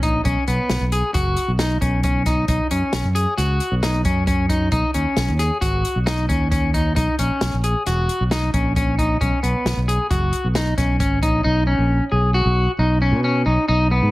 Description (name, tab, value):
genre	progressive instrumental, band music in an uneven meter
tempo	134 BPM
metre	5/4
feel	straight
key	unclear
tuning	A4 = 440 Hz
part	electric guitar at the edge of break-up	arpeggios	0.0-14.1 s	B3 to G#4	-21 LUFS	left 1 dB	spring reverb
part	fingered electric bass	bass	0.0-14.1 s	E1 to B2	-20 LUFS	equal	none
part	open jazz drum kit	drums	0.0-11.3 s	hi-hat, kick drum, snare drum	-24 LUFS	equal	none
room	light reverb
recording	heavily compressed radio sound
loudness	-17 LUFS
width	side -18 dB against mid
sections	0.0-11.4 A section; 11.4-14.1 B section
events	none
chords	0.3 G#m7 (rootless); 2.5 D#m7/B; 4.7 B69; 7.0 F#; 9.2 G#m7; 11.4 F#5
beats	| 0.25 0.70 1.15 1.59 2.04 | 2.49 2.93 3.38 3.83 4.28 | 4.72 5.17 5.62 6.07 6.51 | 6.96 7.41 7.86 8.31 8.76 | 9.21 9.66 10.11 10.55 11.00 | 11.45 11.90 12.35 12.79 13.24 | 13.69